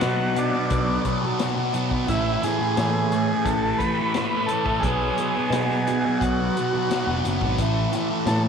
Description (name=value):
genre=psychedelic rock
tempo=87 BPM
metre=4/4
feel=straight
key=B dorian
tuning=A4 = 443 Hz
part: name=combo organ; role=melody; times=0.0-8.4 s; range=D4 to B4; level=-26 LUFS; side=right 1 dB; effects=slapback echo
part: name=bright tonewheel organ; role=sustained chords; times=0.0-8.5 s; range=B4 to D6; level=-37 LUFS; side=right 10 dB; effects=overdrive, chorus vibrato, fast rotary speaker
part: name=thick fuzz guitar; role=riff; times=0.0-8.5 s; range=A2 to B3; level=-23 LUFS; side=equal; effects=distortion, phaser
part: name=picked electric bass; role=bass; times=0.0-8.5 s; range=E1 to B2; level=-26 LUFS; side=equal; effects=none
part: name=vintage drum kit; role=drums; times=0.0-8.4 s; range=hi-hat, kick drum, snare drum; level=-30 LUFS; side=left 4 dB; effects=none
room=light reverb, small room ambience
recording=1960s-style stereo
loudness=-20 LUFS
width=side -6 dB against mid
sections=0.0-8.5 A section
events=none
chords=0.0 Bm; 2.1 Aadd9; 4.8 Bm; 7.6 Aadd9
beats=0.02 0.71 1.40 | 2.09 2.78 3.47 4.15 | 4.84 5.53 6.21 6.90 | 7.58 8.27